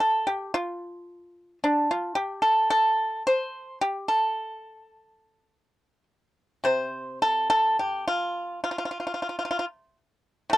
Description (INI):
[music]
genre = chinese traditional, Chinese solo plucked strings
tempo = 54 BPM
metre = 2/4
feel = uneven beats, rubato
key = A jue mode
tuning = A4 = 441 Hz
[part]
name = pipa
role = solo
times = 0.0-10.6 s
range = A2 to C5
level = -23 LUFS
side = equal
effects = none
[sound]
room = light reverb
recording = dry, close 1970s-style studio recording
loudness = -23 LUFS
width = side -16 dB against mid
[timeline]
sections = 0.0-6.7 A section; 6.7-10.6 B section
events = none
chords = none